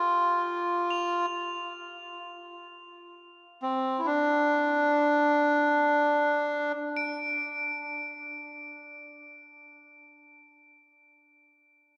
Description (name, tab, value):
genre	world meditative, free-time meditation music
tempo	free time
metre	none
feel	none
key	D minor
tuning	A4 = 440 Hz
part	melodica	melody	0.0-6.7 s	C4 to F4	-28 LUFS	equal	tape echo
part	crotales	texture	0.0-11.3 s	D7 to F7	-38 LUFS	equal	none
room	wet cathedral reverb, RT60 6.7 s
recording	in a vast, echoing space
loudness	-27 LUFS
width	mono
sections	0.0-7.0 A section; 7.0-10.6 B section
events	none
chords	none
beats	free time